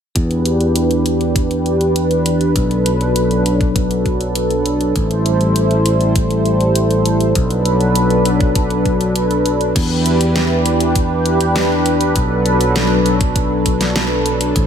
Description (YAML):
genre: synthwave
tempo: 100 BPM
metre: 4/4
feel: straight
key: B phrygian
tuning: A4 = 439 Hz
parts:
  - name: warm analog pad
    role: sustained chords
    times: 0.2-14.7 s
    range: E3 to C5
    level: -16 LUFS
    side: equal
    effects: chorus, sidechain pumping
  - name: picked electric bass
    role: bass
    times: 0.2-14.7 s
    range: A1 to E2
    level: -18 LUFS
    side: equal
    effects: sidechain pumping, low-pass filter
  - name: electronic kick drum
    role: drums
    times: 0.2-14.7 s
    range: none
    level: -18 LUFS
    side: equal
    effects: small room ambience
  - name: pop drum kit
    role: drums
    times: 0.2-14.7 s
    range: crash cymbal, hi-hat, snare drum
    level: -22 LUFS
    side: equal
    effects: small room ambience
room: light reverb, digital ambience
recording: none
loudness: -13 LUFS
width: side -8 dB against mid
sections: 0.2-9.8 A section; 9.8-14.7 B section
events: filter sweep on analog synth pad 0.2-9.8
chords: 0.2 Em7; 2.6 Bm7; 5.0 Am7; 7.4 Bm7; 9.8 Em7; 12.2 Bm7